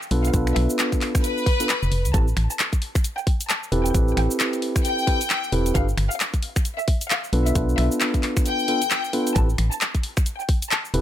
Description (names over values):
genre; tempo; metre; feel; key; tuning
UK garage, two-step garage; 133 BPM; 4/4; swing 60% on 16ths; A minor; A4 = 440 Hz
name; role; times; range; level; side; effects
clear studio violin section; melody; 0.0-10.9 s; B4 to A5; -28 LUFS; left 3 dB; ping-pong delay
garage drum kit; drums; 0.0-11.0 s; cabasa, finger snaps, handclaps, hi-hat; -26 LUFS; left 1 dB; none
mellow tine electric piano; stabs; 0.1-11.0 s; B3 to B4; -25 LUFS; right 1 dB; dub echo
organ-like FM bass; bass; 0.1-11.0 s; E1 to D2; -21 LUFS; equal; none
electronic kick drum; drums; 0.3-10.6 s; none; -21 LUFS; equal; none
room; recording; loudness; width
little or no reverb; none; -20 LUFS; side -11 dB against mid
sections
0.0-11.0 A section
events
none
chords
0.1 Bm7b5; 2.1 Am7; 5.8 G7(no3); 7.3 Bm7b5; 9.4 Am7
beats
| 0.34 0.79 1.24 1.69 | 2.14 2.59 3.04 3.50 | 3.95 4.40 4.85 5.30 | 5.75 6.20 6.65 7.10 | 7.55 8.01 8.46 8.91 | 9.36 9.81 10.26 10.71